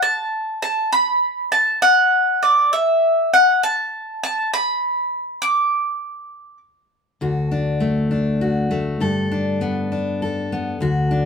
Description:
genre	folk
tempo	67 BPM (dotted quarters)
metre	6/8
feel	straight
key	D major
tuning	A4 = 439 Hz
part	mandolin	melody	0.0-6.6 s	D5 to D6	-16 LUFS	equal	none
part	fingerpicked steel-string acoustic guitar	accompaniment	7.2-11.3 s	D2 to A4	-19 LUFS	left 2 dB	none
room	moderate studio reverb, RT60 0.8 s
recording	band playing live in one room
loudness	-17 LUFS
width	side -5 dB against mid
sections	0.0-7.2 A section; 7.2-11.3 B section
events	none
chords	0.0 N.C.; 7.2 D; 9.0 Gadd9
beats	| 0.02 0.92 | 1.82 2.71 | 3.61 4.51 | 5.41 6.31 | 7.21 8.11 | 9.01 9.91 | 10.81

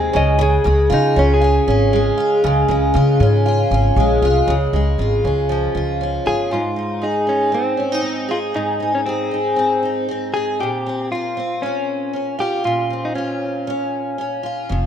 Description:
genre	acoustic pop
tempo	118 BPM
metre	4/4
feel	swing 55% on 16ths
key	Ab major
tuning	A4 = 440 Hz
part	direct-recorded clean electric guitar	melody	0.0-14.4 s	C4 to Eb5	-23 LUFS	left 1 dB	none
part	picked steel-string acoustic guitar	accompaniment	0.0-14.9 s	F2 to Ab4	-18 LUFS	equal	double-tracked left and right
part	upright bass	bass	0.0-6.5, 14.7-14.9 s	F1 to Db3	-17 LUFS	equal	none
room	light reverb, small room ambience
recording	rough home demo mix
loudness	-16 LUFS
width	side -9 dB against mid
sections	0.0-4.5 A section; 4.5-6.5 B section; 6.5-14.9 C section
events	none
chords	0.1 Db; 6.5 Ab; 10.6 Bbmadd9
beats	| 0.40 0.91 1.42 1.93 | 2.44 2.95 3.46 3.97 | 4.48 4.99 5.50 6.01 | 6.52 7.03 7.54 8.05 | 8.56 9.07 9.59 10.10 | 10.61 11.12 11.63 12.14 | 12.65 13.16 13.67 14.18 | 14.70

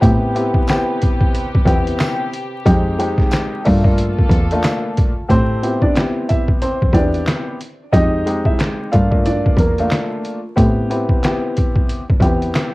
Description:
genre	hip hop, boom-bap hip-hop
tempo	91 BPM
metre	4/4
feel	swing 59% on 16ths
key	unclear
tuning	A4 = 440 Hz
part	dark baby grand piano	accompaniment	0.0-12.7 s	Ab3 to G4	-20 LUFS	left 1 dB	high-pass filter, low-pass filter, cassette tape, plate reverb
part	warm studio string section	sustained chords	0.0-5.3 s	Bb2 to B4	-27 LUFS	left 1 dB	high-pass filter, low-pass filter, cassette tape
part	muted cello	bass	0.0-12.5 s	E2 to A2	-18 LUFS	equal	none
part	trip hop sampler-style drum kit	drums	0.0-12.7 s	handclaps, hi-hat, kick drum, snare drum	-17 LUFS	equal	cassette tape
part	tambourine	percussion	0.7-4.8 s	none	-39 LUFS	right 4 dB	none
part	warm upright piano	melody	5.3-9.9 s	Bb3 to F5	-21 LUFS	right 1 dB	high-pass filter, low-pass filter, cassette tape
room	light reverb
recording	home recording on cassette, vinyl crackle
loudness	-14 LUFS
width	side -20 dB against mid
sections	0.0-5.3 A section; 5.3-12.7 B section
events	none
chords	0.0 Am9; 2.7 Fm9; 3.6 Gm9; 5.3 Am9; 7.9 Fm9; 8.9 Gm9; 10.6 Am9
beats	| 0.02 0.68 1.34 2.00 | 2.66 3.32 3.98 4.64 | 5.30 5.96 6.61 7.27 | 7.93 8.59 9.25 9.91 | 10.57 11.23 11.89 12.55

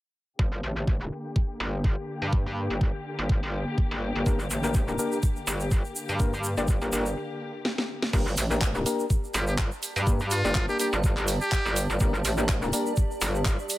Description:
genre	bass house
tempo	124 BPM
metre	4/4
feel	swing 55% on 16ths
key	G minor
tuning	A4 = 444 Hz
part	dark studio string section	sustained chords	0.4-8.1 s	D3 to G4	-34 LUFS	left 2 dB	sidechain pumping, low-pass filter
part	metallic wobble bass	bass	0.4-13.6 s	G1 to G2	-28 LUFS	equal	chorus, tube saturation, sidechain pumping
part	electronic kick drum	drums	0.4-13.6 s	none	-25 LUFS	equal	none
part	percussive organ stab	stabs	4.3-12.9 s	Bb3 to D5	-31 LUFS	left 2 dB	chorus, sidechain pumping, tape echo
part	egg shaker	percussion	4.3-13.8 s	none	-36 LUFS	right 1 dB	none
part	house drum kit	drums	7.7-13.8 s	crash cymbal, handclaps, hi-hat, snare drum	-31 LUFS	equal	low-pass filter on snare, low-pass filter on cymbals, low-pass filter on hats, low-pass filter on room
part	granular cloud pad	texture	9.8-13.8 s	G4 to A5	-35 LUFS	right 2 dB	built-in reverb, sidechain pumping
part	trumpet with metal mute	melody	9.3-11.9 s	F4 to G4	-31 LUFS	equal	tape echo
room	light reverb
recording	none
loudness	-24 LUFS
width	side -16 dB against mid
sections	0.4-8.1 A section; 8.1-13.8 B section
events	filter sweep on string section 0.4-8.1; break 7.2-8.1; drum fill 7.6-8.1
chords	0.4 Gm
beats	| 0.39 0.88 1.36 1.84 | 2.33 2.81 3.29 3.78 | 4.26 4.75 5.23 5.71 | 6.20 6.68 7.17 7.65 | 8.13 8.62 9.10 9.59 | 10.07 10.55 11.04 11.52 | 12.00 12.49 12.97 13.46

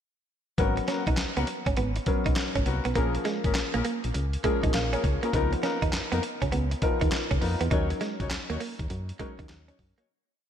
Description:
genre	R&B, new jack swing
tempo	101 BPM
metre	4/4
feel	swing 65% on 16ths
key	G# dorian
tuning	A4 = 441 Hz
part	warm baby grand piano	accompaniment	0.6-10.1 s	E#3 to E#5	-32 LUFS	left 3 dB	slapback echo
part	mellow horn section	stabs	0.6-10.1 s	A#3 to C#5	-35 LUFS	left 5 dB	ping-pong delay, slapback echo
part	solid FM bass	bass	0.6-9.9 s	G#1 to F#2	-30 LUFS	equal	none
part	dusty soul sampler-style drum kit	drums	0.6-10.1 s	handclaps, hi-hat, kick drum, snare drum	-29 LUFS	equal	none
part	direct-recorded clean electric guitar	riff	0.8-10.1 s	G#3 to D#4	-32 LUFS	right 5 dB	lush chorus, slapback echo
room	light reverb, digital ambience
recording	none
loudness	-25 LUFS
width	side -9 dB against mid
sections	0.6-10.1 verse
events	fade-out 7.7-10.1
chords	0.6 G#m11; 3.0 A#m7; 5.3 C#13; 7.7 D#m7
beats	| 0.58 1.18 1.77 2.36 | 2.96 3.55 4.15 4.74 | 5.33 5.93 6.52 7.12 | 7.71 8.30 8.90 9.49

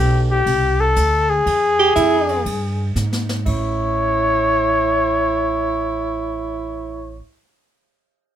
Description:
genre	jazz, small-group swing and bop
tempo	120 BPM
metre	4/4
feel	swing 66% on 8ths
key	unclear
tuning	A4 = 440 Hz
part	mellow trumpet	melody	0.0-7.2 s	G4 to C#5	-18 LUFS	left 3 dB	none
part	upright bass	bass	0.0-7.2 s	A1 to G#2	-22 LUFS	right 1 dB	none
part	jazz brush drum kit	drums	0.5-3.6 s	crash cymbal, hi-hat, kick drum, ride cymbal, snare drum	-29 LUFS	equal	none
part	breathy tenor saxophone	second line	1.8-7.2 s	E4 to G4	-21 LUFS	right 8 dB	none
room	moderate small room reverb, RT60 0.5 s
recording	none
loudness	-16 LUFS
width	side -10 dB against mid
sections	0.0-3.5 A section; 3.5-7.5 B section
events	drum fill 3.0-3.5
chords	0.0 Am7; 1.5 E; 3.5 A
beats	0.46 0.96 | 1.46 1.96 2.46 2.96 | 3.46 3.96 4.46 4.96 | 5.46 5.96 6.46 6.96

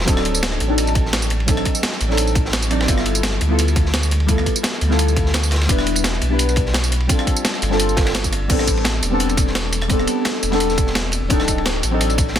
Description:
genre	liquid drum and bass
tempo	171 BPM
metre	4/4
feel	swing 53% on 16ths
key	A minor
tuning	A4 = 440 Hz
part	deep mellow chord stab	accompaniment	0.0-12.4 s	F#3 to D5	-21 LUFS	left 1 dB	chorus, phaser, tape echo
part	sub bass with octave	bass	0.0-12.4 s	D1 to D2	-21 LUFS	equal	tube saturation
part	crunchy breakbeat drum kit	drums	0.0-12.4 s	ride cymbal, snare drum	-28 LUFS	equal	high-pass filter on cymbals, high-pass filter on snare, high-pass filter on room
part	breakbeat sampler-style drum kit	drums	0.1-12.4 s	crash cymbal, hi-hat, rim click, snare drum, tambourine	-22 LUFS	equal	overdrive
part	electronic kick drum	drums	0.1-12.3 s	none	-20 LUFS	equal	none
room	light reverb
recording	dense, heavily limited modern master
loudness	-16 LUFS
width	side -10 dB against mid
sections	0.0-8.5 A section; 8.5-12.4 A section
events	drop 0.0-8.5, 8.5-12.4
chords	0.1 D7b9; 2.9 G13; 5.7 Em7; 7.1 G9sus4; 8.5 Am11; 11.3 D7b9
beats	| 0.08 0.43 0.78 1.13 | 1.48 1.83 2.18 2.53 | 2.88 3.23 3.59 3.94 | 4.29 4.64 4.99 5.34 | 5.69 6.04 6.39 6.74 | 7.09 7.45 7.80 8.15 | 8.50 8.85 9.20 9.55 | 9.90 10.25 10.60 10.95 | 11.30 11.66 12.01 12.36

